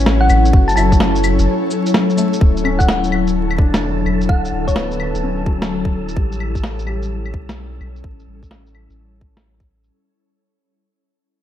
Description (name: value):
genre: future garage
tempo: 128 BPM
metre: 4/4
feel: swing 65% on 16ths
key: unclear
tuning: A4 = 439 Hz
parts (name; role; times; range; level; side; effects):
- felt-muted upright piano; accompaniment; 0.0-9.9 s; F#3 to F#4; -26 LUFS; left 2 dB; sidechain pumping, low-pass filter, tape echo
- ethereal airy pad; sustained chords; 0.0-9.9 s; D3 to C#5; -20 LUFS; left 2 dB; ensemble chorus, built-in reverb, sidechain pumping
- soft dub sub bass; bass; 0.0-9.9 s; D1 to B1; -20 LUFS; equal; sidechain pumping
- electronic snare drum, cabasa, claves and shaker; drums; 0.1-9.9 s; none; -21 LUFS; equal; low-pass filter on perc, low-pass filter on snare, low-pass filter on room
- thumb-piano-like synth pluck; melody; 0.2-5.1 s; C#5 to A5; -22 LUFS; left 1 dB; chorus, tape echo
- electronic kick drum; drums; 0.5-9.7 s; none; -14 LUFS; equal; none
- wind-like tuned noise texture; texture; 3.1-9.9 s; A4 to A5; -33 LUFS; left 2 dB; built-in reverb, lush chorus
room: moderate plate reverb, RT60 2.0 s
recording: dreamy mix soaked in reverb, vinyl crackle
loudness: -14 LUFS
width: side -11 dB against mid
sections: 0.0-2.4 A section; 2.4-9.9 B section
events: break 1.5-2.4; fade-out 2.4-9.9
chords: 0.0 F#m7; 2.4 Dmaj9; 6.2 A7